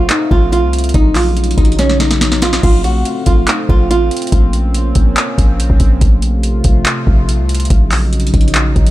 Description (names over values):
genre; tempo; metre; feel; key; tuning
hip hop, trap; 142 BPM; 4/4; half-time; unclear; A4 = 440 Hz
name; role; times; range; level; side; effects
flamenco guitar; melody; 0.0-4.3 s; Db4 to Gb4; -17 LUFS; right 2 dB; ping-pong delay
sweeping resonant pad; sustained chords; 0.0-8.9 s; C3 to F5; -21 LUFS; equal; chorus
warm 808-style bass; bass; 0.0-8.9 s; A1 to C2; -14 LUFS; equal; none
booming analog drum machine; drums; 0.1-8.9 s; crash cymbal, handclaps, hi-hat, kick drum, snare drum; -14 LUFS; equal; vintage 12-bit sampler grit
room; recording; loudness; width
digital ambience; none; -10 LUFS; side -16 dB against mid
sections
0.0-8.9 A section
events
drum fill 1.8-2.6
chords
0.0 F/Bb; 0.9 Ebm7/Bb; 2.6 F/Bb; 4.3 Bbmadd9; 6.0 F/Bb; 7.7 Ebm7/Bb